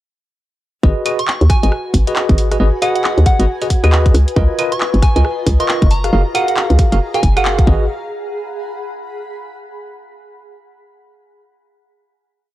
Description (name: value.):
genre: UK garage, two-step garage.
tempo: 136 BPM.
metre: 4/4.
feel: swing 61% on 16ths.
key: G# dorian.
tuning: A4 = 439 Hz.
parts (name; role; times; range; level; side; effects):
bell-like tine electric piano; stabs; 0.8-7.8 s; E#4 to E#5; -20 LUFS; equal; fast stereo tremolo, tape echo.
hollow knocking FM bass; bass; 0.8-7.9 s; F#1 to D#2; -13 LUFS; equal; none.
electronic kick drum; drums; 0.8-7.8 s; none; -13 LUFS; equal; none.
granular cloud pad; texture; 1.3-9.6 s; E#4 to B5; -26 LUFS; left 1 dB; built-in reverb, sidechain pumping.
garage drum kit; drums; 1.1-7.7 s; claves, handclaps, hi-hat, rim click; -21 LUFS; equal; none.
soft synth bell; melody; 1.2-7.5 s; F#5 to C#6; -22 LUFS; right 1 dB; chorus, phaser, tape echo.
room: digital ambience.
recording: dry, gritty hardware recording, cassette tape.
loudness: -12 LUFS.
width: side -15 dB against mid.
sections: 0.8-7.9 drop; 7.9-9.7 final note.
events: drop 0.8-7.9; band accent 7.5.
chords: 0.8 G#m7; 4.1 C#13; 5.9 F#maj9; 7.7 G#m7.